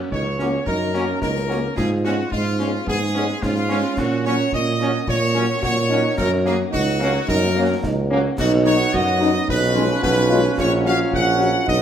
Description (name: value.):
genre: military-style march for wind band.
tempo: 109 BPM.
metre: 2/4.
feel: straight.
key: F# major.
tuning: A4 = 440 Hz.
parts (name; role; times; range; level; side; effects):
warm euphonium; second line; 0.0-11.8 s; A#3 to F#4; -25 LUFS; right 2 dB; none.
mellow tuba; bass; 0.0-11.8 s; A#1 to A#2; -21 LUFS; right 1 dB; none.
clear trumpet section; melody; 0.1-11.8 s; E#4 to F#5; -23 LUFS; equal; none.
concert bass drum, concert snare drum and clash cymbals; drums; 0.1-11.8 s; none; -31 LUFS; left 2 dB; none.
mellow French horn section; accompaniment; 0.4-11.5 s; F#3 to F#4; -26 LUFS; left 4 dB; none.
clear trombone section; sustained chords; 0.4-11.8 s; E#3 to C#4; -28 LUFS; right 2 dB; none.
room: wet large studio reverb, RT60 1.2 s.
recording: none.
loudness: -17 LUFS.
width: side -9 dB against mid.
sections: 0.0-11.8 A section.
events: none.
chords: 0.0 F#; 1.8 C#7/G#; 4.0 F#/A#; 6.2 F#; 8.4 B; 9.5 C#7/B; 10.6 F#/A#.